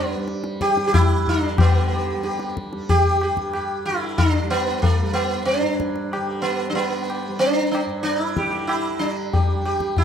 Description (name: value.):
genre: indian classical, Hindustani.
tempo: 93 BPM.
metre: 4/4.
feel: straight.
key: unclear.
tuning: A4 = 439 Hz.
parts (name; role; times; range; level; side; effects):
sitar; melody; 0.0-10.0 s; A3 to G4; -21 LUFS; right 1 dB; none.
tanpura; drone; 0.0-10.0 s; G2 to G3; -30 LUFS; right 1 dB; none.
tabla; percussion; 0.3-10.0 s; none; -21 LUFS; left 2 dB; none.
room: wet recital hall reverb, RT60 1.6 s.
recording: none.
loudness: -19 LUFS.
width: side -8 dB against mid.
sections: 0.0-1.6 A section; 1.6-10.0 B section.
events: none.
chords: none.